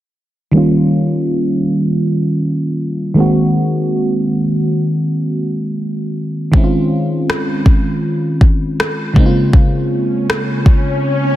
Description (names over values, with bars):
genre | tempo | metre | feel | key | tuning
contemporary R&B | 80 BPM | 4/4 | straight | unclear | A4 = 440 Hz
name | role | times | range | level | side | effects
mellow FM electric piano | accompaniment | 0.5-11.4 s | Db3 to Gb4 | -14 LUFS | equal | chorus, low-pass filter
smooth R&B drum kit | drums | 6.5-10.8 s | kick drum, rim click | -12 LUFS | equal | soft clipping on snare
swell | sound effects | 10.2-11.4 s | none | -21 LUFS | left 1 dB | none
room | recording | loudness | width
light reverb | dense, heavily limited modern master | -13 LUFS | side -14 dB against mid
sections
0.5-11.4 A section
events
filter sweep on FM electric piano 0.5-11.4; swell 10.2-11.4; break 11.0-11.4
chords
0.5 Eb9; 3.2 Ab9; 6.5 Dbmaj7; 9.2 Bbm7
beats
| 0.54 1.29 2.04 2.79 | 3.54 4.29 5.04 5.79 | 6.54 7.29 8.04 8.79 | 9.54 10.29 11.04